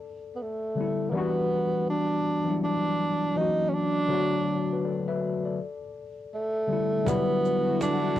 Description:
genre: lo-fi hip hop.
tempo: 81 BPM.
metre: 4/4.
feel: swing 61% on 16ths.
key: E minor.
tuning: A4 = 440 Hz.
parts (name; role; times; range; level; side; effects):
tine electric piano; accompaniment; 0.0-8.2 s; D3 to E5; -28 LUFS; left 4 dB; medium stereo tremolo, cassette tape.
breathy tenor saxophone; melody; 0.4-8.2 s; A3 to D#4; -27 LUFS; right 2 dB; cassette tape.
lush unison pad; sustained chords; 7.4-8.2 s; D3 to F#4; -32 LUFS; right 3 dB; chorus, phaser, cassette tape.
cajon; drums; 7.1-8.2 s; none; -33 LUFS; right 2 dB; none.
egg shaker; percussion; 7.1-8.0 s; none; -47 LUFS; right 16 dB; none.
room: wet booth ambience, RT60 0.2 s.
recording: home recording on cassette.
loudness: -24 LUFS.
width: side -12 dB against mid.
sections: 0.0-7.1 A section; 7.1-8.2 B section.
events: none.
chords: 0.0 G69; 1.1 Em9; 3.4 F#7; 4.1 Bm7; 5.6 G69; 7.1 Em9.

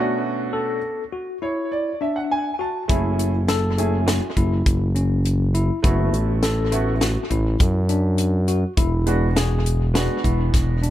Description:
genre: progressive instrumental, band music in an uneven meter.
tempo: 102 BPM.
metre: 5/4.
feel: straight.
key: F# minor.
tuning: A4 = 440 Hz.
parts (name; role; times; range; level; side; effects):
warm grand piano; accompaniment; 0.0-10.8 s; B2 to A5; -25 LUFS; right 3 dB; analog delay.
tine electric piano; arpeggios; 0.0-10.9 s; C#4 to A4; -26 LUFS; left 3 dB; medium stereo tremolo.
smooth gliding synth bass; bass; 2.9-10.9 s; E1 to F#2; -20 LUFS; equal; none.
tight funk drum kit; drums; 2.9-10.9 s; hi-hat, kick drum, snare drum; -22 LUFS; equal; analog delay.
room: light reverb.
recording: echo-heavy mix.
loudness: -18 LUFS.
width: side -13 dB against mid.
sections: 0.0-10.9 A section.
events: grand piano fill 1.1-2.9.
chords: 0.0 Bm7; 2.9 F#m7; 5.8 D69/F#; 8.8 E7.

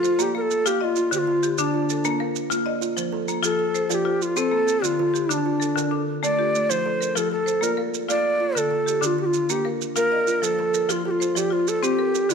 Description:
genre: southern african traditional, mbira-style interlocking cycle.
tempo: 129 BPM (dotted quarters).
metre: 12/8.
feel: straight.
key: F mixolydian.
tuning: A4 = 440 Hz.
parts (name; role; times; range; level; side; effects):
breathy bright low Native American-style wooden flute; melody; 0.0-12.3 s; D4 to D5; -22 LUFS; equal; none.
kalimba; arpeggios; 0.0-12.3 s; D3 to F5; -29 LUFS; right 9 dB; tape echo.
marimba with hard mallets; arpeggios; 0.0-12.3 s; D3 to F5; -27 LUFS; left 11 dB; none.
maracas; percussion; 0.0-12.3 s; none; -30 LUFS; right 15 dB; none.
room: moderate echo chamber reverb, RT60 2.3 s.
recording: 1960s-style stereo with parts hard left and right.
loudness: -20 LUFS.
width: side -6 dB against mid.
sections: 0.0-12.3 A section.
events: none.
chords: 0.2 Bb; 1.1 Dm; 2.0 Bb; 3.0 F; 4.8 Dm; 6.7 F; 7.6 Bb; 8.6 Dm; 9.5 Bb; 10.4 F.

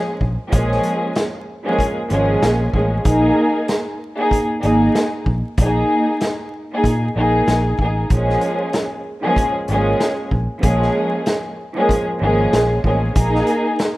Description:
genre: hip hop, boom-bap hip-hop.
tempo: 95 BPM.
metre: 4/4.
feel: swing 60% on 16ths.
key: Bb minor.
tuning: A4 = 440 Hz.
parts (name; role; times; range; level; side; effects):
warm studio string section; accompaniment; 0.0-14.0 s; F3 to Ab4; -18 LUFS; equal; high-pass filter, low-pass filter.
fingered electric bass; bass; 0.2-13.4 s; Ab1 to Bb2; -20 LUFS; equal; none.
vintage drum kit; drums; 0.2-14.0 s; hi-hat, kick drum, snare drum; -21 LUFS; equal; none.
room: light reverb, small room ambience.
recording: rough home demo mix, vinyl crackle.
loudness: -16 LUFS.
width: side -18 dB against mid.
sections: 0.0-14.0 A section.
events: none.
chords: 0.0 Bbm7; 3.1 Absus2; 8.1 Bbm7; 13.2 Absus2.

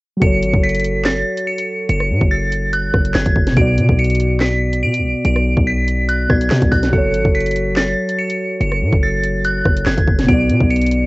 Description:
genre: hip hop, drill.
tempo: 143 BPM.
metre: 4/4.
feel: half-time.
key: F# minor.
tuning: A4 = 444 Hz.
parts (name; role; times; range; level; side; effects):
dark detuned synth bell; melody; 0.2-11.1 s; F#6 to D7; -20 LUFS; right 1 dB; chorus, cassette tape.
muted felt-like synth keys; accompaniment; 0.2-11.1 s; B2 to D5; -19 LUFS; equal; chorus, cassette tape.
hard-hitting 808-style bass; bass; 0.2-11.1 s; F#1 to B2; -18 LUFS; equal; none.
drill drum kit; drums; 0.2-11.0 s; handclaps, hi-hat, kick drum, rim click, snare drum; -18 LUFS; equal; cassette tape.
room: little or no reverb.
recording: home recording on cassette, nothing above 8.0 kHz.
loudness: -14 LUFS.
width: side -23 dB against mid.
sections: 0.2-11.1 A section.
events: none.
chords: 0.2 F#m; 3.6 Bm; 6.9 F#m; 10.3 Bm.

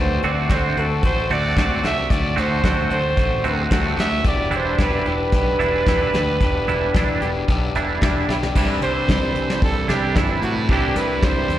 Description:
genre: indie rock.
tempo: 112 BPM.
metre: 4/4.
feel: straight.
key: unclear.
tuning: A4 = 440 Hz.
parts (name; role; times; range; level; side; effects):
clear trumpet; melody; 0.0-11.6 s; E4 to E5; -23 LUFS; right 2 dB; slapback echo, tape echo.
electric guitar through a small old amp; riff; 0.0-11.6 s; E3 to G4; -26 LUFS; left 6 dB; slapback echo.
fuzz picked electric bass; bass; 0.0-11.6 s; E1 to A2; -24 LUFS; equal; overdrive.
twangy electric guitar; riff; 0.2-11.6 s; C3 to F#4; -25 LUFS; right 6 dB; analog chorus, slapback echo.
soft brush drum kit; drums; 0.2-11.6 s; crash cymbal, hi-hat, kick drum, snare drum; -21 LUFS; equal; none.
room: light reverb, small room reverb.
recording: live gig heard through the venue's PA, recital hall reverb.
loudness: -17 LUFS.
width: side -12 dB against mid.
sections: 0.0-8.5 A section; 8.5-11.6 B section.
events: none.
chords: 0.0 D7; 4.2 Em7; 8.5 G5.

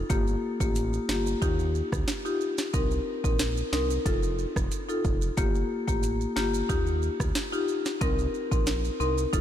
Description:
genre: dancehall.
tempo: 91 BPM.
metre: 4/4.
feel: straight.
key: unclear.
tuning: A4 = 440 Hz.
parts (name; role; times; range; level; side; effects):
round analog bass; bass; 0.0-9.4 s; F1 to Eb2; -30 LUFS; right 1 dB; none.
marimba with medium mallets; accompaniment; 0.1-9.4 s; Bb3 to Bb4; -28 LUFS; left 2 dB; none.
afro-pop drum kit; drums; 0.1-9.4 s; hi-hat, kick drum, rim click, snare drum; -29 LUFS; right 1 dB; none.
maracas; percussion; 0.1-9.4 s; none; -43 LUFS; right 16 dB; none.
room: light reverb, small room ambience.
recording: none.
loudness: -25 LUFS.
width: side -10 dB against mid.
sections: 0.0-9.4 A section.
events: none.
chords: 0.1 Gm7; 1.4 Ebadd9; 2.7 Cm7; 4.1 F7; 5.4 Gm7; 6.7 Ebadd9; 8.0 Cm7.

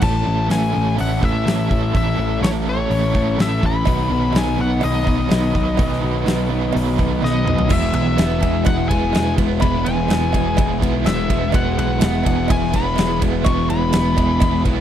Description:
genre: classic rock.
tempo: 125 BPM.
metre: 4/4.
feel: straight.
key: E major.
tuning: A4 = 442 Hz.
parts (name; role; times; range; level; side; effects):
nasal lead guitar with a parked wah; melody; 0.0-14.6 s; C#5 to C#6; -24 LUFS; left 4 dB; overdrive.
biting overdriven guitar; riff; 0.0-14.8 s; E2 to B4; -25 LUFS; right 12 dB; tremolo.
sludgy distorted guitar; riff; 0.0-14.8 s; A2 to E4; -24 LUFS; left 10 dB; overdrive.
growling picked electric bass; bass; 0.0-14.8 s; E1 to B1; -22 LUFS; equal; overdrive.
huge arena drum kit; drums; 0.0-14.8 s; crash cymbal, hi-hat, kick drum, ride cymbal, snare drum, toms; -21 LUFS; equal; none.
biting overdriven guitar; riff; 3.9-14.8 s; B2 to E4; -24 LUFS; right 1 dB; tremolo.
cowbell; percussion; 3.9-14.5 s; none; -30 LUFS; right 16 dB; none.
room: little or no reverb.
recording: dry, close 1970s-style studio recording.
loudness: -16 LUFS.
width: side -10 dB against mid.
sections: 0.0-7.7 A section; 7.7-14.8 B section.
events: drum fill 7.2-7.7.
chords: 0.0 A; 3.9 B; 7.7 E.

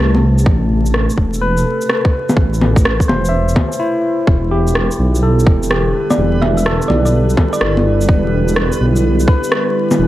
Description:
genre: future garage.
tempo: 126 BPM.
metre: 4/4.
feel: swing 66% on 16ths.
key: unclear.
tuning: A4 = 445 Hz.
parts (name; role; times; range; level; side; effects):
barky tine electric piano; accompaniment; 0.0-10.1 s; E4 to E5; -20 LUFS; left 1 dB; phaser, sidechain pumping, tape echo.
warbly tape-like pad; sustained chords; 0.0-10.1 s; B2 to A4; -21 LUFS; right 1 dB; chorus, built-in reverb, sidechain pumping.
dark detuned saw bass; bass; 0.0-10.1 s; E1 to C2; -15 LUFS; equal; sidechain pumping.
electronic bongos, shaker and rim click; drums; 0.1-10.0 s; none; -18 LUFS; equal; overdrive.
electronic kick drum; drums; 0.5-9.4 s; none; -13 LUFS; equal; overdrive.
backwards swelling texture; texture; 5.9-10.1 s; B4; -28 LUFS; right 5 dB; built-in reverb.
thumb-piano-like synth pluck; melody; 6.1-8.0 s; D5 to E5; -24 LUFS; right 1 dB; chorus, analog delay.
room: digital ambience.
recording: vinyl crackle.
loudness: -12 LUFS.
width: side -15 dB against mid.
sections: 0.0-4.3 A section; 4.3-10.1 B section.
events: none.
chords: 0.0 Am11; 4.3 Em7.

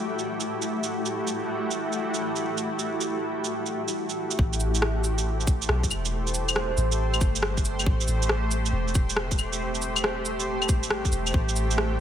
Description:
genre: future garage.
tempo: 138 BPM.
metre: 4/4.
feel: swing 67% on 16ths.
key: A dorian.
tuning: A4 = 435 Hz.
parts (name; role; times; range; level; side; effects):
granular cloud pad; sustained chords; 0.0-12.0 s; A3 to F#5; -28 LUFS; equal; built-in reverb, sidechain pumping.
electronic shaker, cabasa, rim click and claves; drums; 0.2-11.9 s; none; -28 LUFS; right 1 dB; none.
soft 808-style bass; bass; 4.4-12.0 s; E1 to B1; -28 LUFS; equal; sidechain pumping.
electronic kick drum; drums; 4.4-11.5 s; none; -24 LUFS; equal; none.
room: light reverb, digital ambience.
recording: none.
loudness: -24 LUFS.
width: side -10 dB against mid.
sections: 0.0-4.4 A section; 4.4-12.0 B section.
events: none.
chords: 0.0 Emadd9/A; 4.4 Am7; 11.3 Emadd9.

